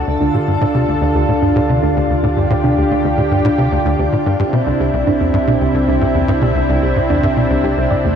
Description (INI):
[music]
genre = ambient, sequencer-driven space music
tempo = 111 BPM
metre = 4/4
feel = straight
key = D minor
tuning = A4 = 440 Hz
[part]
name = lush unison pad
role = sustained chords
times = 0.0-8.2 s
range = C3 to A4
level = -16 LUFS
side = equal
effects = chorus, shimmer reverb
[part]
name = tight sequencer bass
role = riff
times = 0.0-8.1 s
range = C2 to C3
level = -18 LUFS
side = equal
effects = ensemble chorus, ping-pong delay
[part]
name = warm sub bass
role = bass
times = 0.0-8.2 s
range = C2 to D2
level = -24 LUFS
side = equal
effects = tube saturation
[part]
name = thumb-piano-like synth pluck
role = arpeggios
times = 0.2-8.2 s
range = A3 to D5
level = -21 LUFS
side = moving between left 2 dB and right 5 dB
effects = chorus, auto-pan, ping-pong delay, shimmer reverb
[sound]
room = moderate plate reverb, RT60 2.5 s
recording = dreamy mix soaked in reverb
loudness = -13 LUFS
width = side -8 dB against mid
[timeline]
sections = 0.1-8.2 A section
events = filter sweep on synth arpeggio sound 0.1-8.2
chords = 0.1 Dm; 4.4 Cadd9